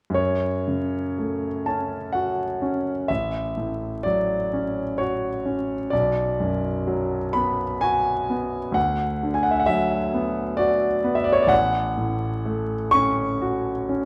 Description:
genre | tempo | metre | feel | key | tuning
classical, romantic nocturne for solo piano | 64 BPM | 3/4 | rubato | F# minor | A4 = 440 Hz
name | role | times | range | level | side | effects
clear grand piano | solo | 0.1-14.1 s | A1 to C#6 | -24 LUFS | equal | none
room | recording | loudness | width
moderate recital hall reverb, RT60 1.3 s | vinyl crackle | -24 LUFS | mono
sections
0.2-14.1 A section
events
none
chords
0.2 F#m; 3.1 F#m/A; 5.9 Bm; 8.8 Bm/D; 11.5 F#m/A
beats
| 0.16 1.18 2.15 | 3.09 4.05 4.99 | 5.92 6.87 7.81 | 8.76 9.68 10.59 | 11.51 12.45 13.42

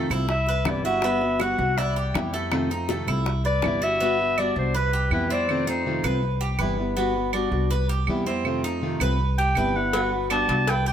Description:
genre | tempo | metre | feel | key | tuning
latin, Cuban son and guajira | 162 BPM | 4/4 | straight | G major | A4 = 439 Hz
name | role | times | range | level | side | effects
nylon-string guitar | accompaniment | 0.0-10.7 s | C3 to F#4 | -28 LUFS | left 1 dB | none
Cuban tres | arpeggios | 0.0-10.9 s | A3 to B4 | -28 LUFS | right 2 dB | none
upright bass | bass | 0.0-10.9 s | G1 to F2 | -27 LUFS | equal | none
bongos and cowbell | percussion | 0.1-3.8, 9.9-10.9 s | none | -32 LUFS | left 4 dB | none
claves | percussion | 0.1-10.5 s | none | -32 LUFS | right 9 dB | none
clear clarinet | melody | 0.3-6.2, 9.4-10.9 s | B4 to A5 | -25 LUFS | left 1 dB | none
room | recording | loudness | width
light reverb | none | -21 LUFS | side -9 dB against mid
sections
0.0-4.0 A section; 4.0-10.9 B section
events
clarinet solo 0.0-4.0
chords
0.3 Cmaj7; 1.0 Gmaj7; 1.8 Cmaj7; 2.5 F7; 3.3 Cmaj7; 4.0 Gmaj7; 4.7 Cmaj7; 5.5 F7; 6.2 Cmaj7; 7.0 Gmaj7; 7.7 Cmaj7; 8.4 F7; 9.2 Cmaj7; 9.9 Gmaj7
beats
0.29 0.66 | 1.03 1.40 1.77 2.15 | 2.52 2.89 3.26 3.63 | 4.00 4.37 4.74 5.11 | 5.48 5.85 6.22 6.59 | 6.96 7.34 7.71 8.08 | 8.45 8.82 9.19 9.56 | 9.93 10.30 10.68

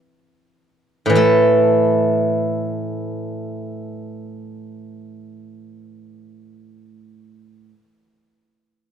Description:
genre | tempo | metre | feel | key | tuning
chinese traditional, Chinese solo plucked strings | free time | none | none | unclear | A4 = 440 Hz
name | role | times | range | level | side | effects
steel-string zither | solo | 1.1-7.7 s | A2 to A4 | -17 LUFS | right 1 dB | none
room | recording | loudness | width
light reverb | worn, warbling old tape, cassette tape, warbly pitch drift | -15 LUFS | side -8 dB against mid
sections
0.0-1.2 A section; 1.2-6.9 B section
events
slowing down 0.0-1.2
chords
none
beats
free time

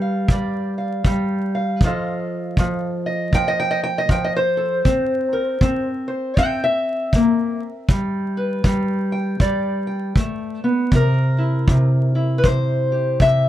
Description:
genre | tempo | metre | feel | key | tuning
acoustic country blues, solo or duo | 79 BPM | 4/4 | swing 61% on 8ths | unclear | A4 = 440 Hz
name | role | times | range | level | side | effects
fingerpicked steel-string acoustic guitar | melody | 0.0-13.5 s | C3 to G5 | -19 LUFS | equal | none
kick drum | drums | 0.3-13.4 s | none | -18 LUFS | equal | none
room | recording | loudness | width
moderate booth ambience, RT60 0.2 s | close, detailed microphones, vinyl crackle | -17 LUFS | side -12 dB against mid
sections
0.0-10.9 A section; 10.9-13.5 B section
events
steel-string acoustic guitar solo 0.0-10.9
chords
0.0 G7; 1.8 F7; 4.9 C7; 7.9 G; 10.9 C7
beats
0.30 1.06 | 1.82 2.58 3.34 4.10 | 4.86 5.62 6.38 7.13 | 7.89 8.65 9.41 10.17 | 10.93 11.69 12.45 13.21

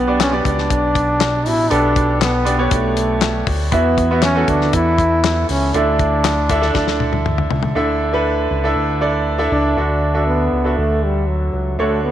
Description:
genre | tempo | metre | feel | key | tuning
piano-driven pop | 119 BPM | 4/4 | straight | D major | A4 = 440 Hz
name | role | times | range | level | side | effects
clear trombone | melody | 0.0-12.1 s | F#3 to E4 | -19 LUFS | equal | none
bright upright piano | accompaniment | 0.0-12.1 s | B2 to E5 | -19 LUFS | right 2 dB | none
chorused synth bass | bass | 0.0-12.1 s | A1 to E2 | -20 LUFS | equal | none
damped 70s drum kit | drums | 0.2-7.7 s | handclaps, hi-hat, kick drum, snare drum, toms | -21 LUFS | left 4 dB | none
room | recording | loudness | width
moderate plate reverb, RT60 2.6 s | 1960s-style stereo | -14 LUFS | side -11 dB against mid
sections
0.0-7.8 A section; 7.8-9.8 B section; 9.8-12.1 C section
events
drum fill 6.8-7.8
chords
0.0 G; 3.7 Esus2; 5.7 Dsus2; 9.8 Dadd9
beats
0.20 0.70 1.21 | 1.71 2.21 2.72 3.22 | 3.73 4.23 4.73 5.24 | 5.74 6.25 6.75 7.25 | 7.76 8.26 8.77 9.27 | 9.78 10.28 10.78 11.29 | 11.79

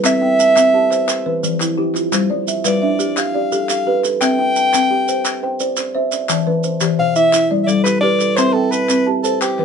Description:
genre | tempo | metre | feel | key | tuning
southern african traditional, mbira-style interlocking cycle | 115 BPM (dotted quarters) | 12/8 | straight | unclear | A4 = 439 Hz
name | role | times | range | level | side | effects
folk marimba with medium mallets | arpeggios | 0.0-9.6 s | E3 to A5 | -20 LUFS | left 4 dB | none
kalimba | arpeggios | 0.0-9.6 s | B2 to A5 | -20 LUFS | right 4 dB | none
group handclap | percussion | 0.0-9.6 s | none | -25 LUFS | left 5 dB | none
maracas | percussion | 0.0-9.6 s | none | -23 LUFS | right 7 dB | none
clear soprano saxophone | melody | 0.1-9.6 s | G4 to G5 | -16 LUFS | right 1 dB | none
room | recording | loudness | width
light reverb | band playing live in one room, nothing above 10.8 kHz | -14 LUFS | side -6 dB against mid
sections
0.0-9.6 A section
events
none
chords
0.0 C; 1.1 Em; 2.1 G; 4.2 C; 6.3 Em; 7.3 G; 8.4 C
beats
| 0.04 0.56 1.08 1.60 | 2.13 2.65 3.17 3.69 | 4.21 4.73 5.25 5.77 | 6.29 6.82 7.34 7.86 | 8.38 8.90 9.42

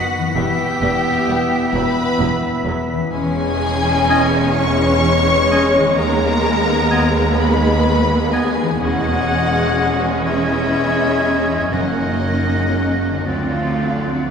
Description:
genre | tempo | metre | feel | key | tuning
cinematic, emotional film score for orchestra | 42 BPM (dotted quarters) | 6/8 | uneven beats, rubato | unclear | A4 = 438 Hz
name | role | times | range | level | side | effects
warm symphonic violin section | melody | 0.0-14.3 s | D5 to C#6 | -23 LUFS | left 3 dB | none
bright concert flute | second line | 0.0-14.3 s | G#6 to B6 | -26 LUFS | left 1 dB | none
bright oboe | second line | 0.0-14.3 s | D#5 to F#5 | -29 LUFS | right 1 dB | none
mellow clarinet | second line | 0.0-14.3 s | B3 to C#4 | -28 LUFS | equal | none
warm symphonic violin section | second line | 0.0-14.3 s | D4 to C#5 | -24 LUFS | left 2 dB | none
mellow French horn section | sustained chords | 0.0-14.3 s | D#3 to C#4 | -24 LUFS | left 3 dB | none
concert harp | arpeggios | 0.0-14.3 s | F#2 to B4 | -28 LUFS | left 4 dB | none
rich studio cello section | bass | 0.3-14.3 s | D2 to E#4 | -23 LUFS | right 2 dB | none
rich symphonic viola section | accompaniment | 0.4-14.3 s | E#3 to C#4 | -22 LUFS | right 1 dB | none
rich symphonic double bass section | bass | 0.4-14.3 s | E1 to D#2 | -24 LUFS | right 3 dB | none
timpani | percussion | 11.7-13.2 s | F#2 | -32 LUFS | equal | none
room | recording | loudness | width
wet church reverb, RT60 3.1 s | none | -14 LUFS | side -6 dB against mid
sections
0.0-14.3 A section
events
none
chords
0.4 Em; 3.1 C#m/E; 6.0 G#madd9/D#; 8.8 C#madd9/E; 11.7 F#; 13.3 D7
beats
| 0.35 1.73 | 3.12 4.58 | 5.97 7.38 | 8.80 10.24 | 11.72 13.26

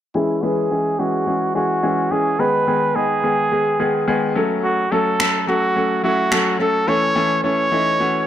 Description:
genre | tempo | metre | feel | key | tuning
dance-pop | 107 BPM | 4/4 | straight | C# minor | A4 = 440 Hz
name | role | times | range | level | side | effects
clear trumpet | melody | 0.1-8.3 s | E4 to C#5 | -19 LUFS | right 1 dB | low-pass filter, dub echo
bright grand piano | accompaniment | 0.1-8.2 s | D#3 to B4 | -20 LUFS | left 2 dB | low-pass filter, dub echo
electronic finger snaps | drums | 5.2-6.4 s | none | -20 LUFS | right 1 dB | none
room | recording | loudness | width
moderate spring reverb, RT60 1.8 s, studio ambience | echo-heavy mix | -16 LUFS | side -11 dB against mid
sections
0.1-8.3 A section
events
filter sweep 0.1-8.3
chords
0.1 C#m; 2.4 G#m; 4.4 F#m; 6.9 A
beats
| 0.15 0.71 1.27 1.83 | 2.39 2.95 3.51 4.08 | 4.63 5.20 5.76 6.32 | 6.88 7.44 8.00

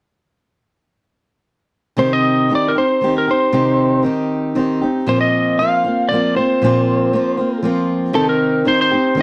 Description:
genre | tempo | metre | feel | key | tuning
rock | 117 BPM | 3/4 | straight | C minor | A4 = 440 Hz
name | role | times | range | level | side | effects
lightly driven lead guitar | melody | 2.0-9.2 s | A4 to F5 | -19 LUFS | equal | slapback echo
picked steel-string acoustic guitar | accompaniment | 2.0-9.2 s | Bb2 to G4 | -19 LUFS | equal | none
room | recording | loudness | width
little or no reverb | dry, close 1970s-style studio recording | -16 LUFS | mono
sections
2.0-8.2 A section; 8.2-9.2 B section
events
none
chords
2.0 Cm; 5.1 Bbsus2; 8.2 Cm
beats
| 1.99 2.50 3.02 | 3.53 4.05 4.56 | 5.07 5.59 6.10 | 6.62 7.13 7.64 | 8.15 8.66 9.18

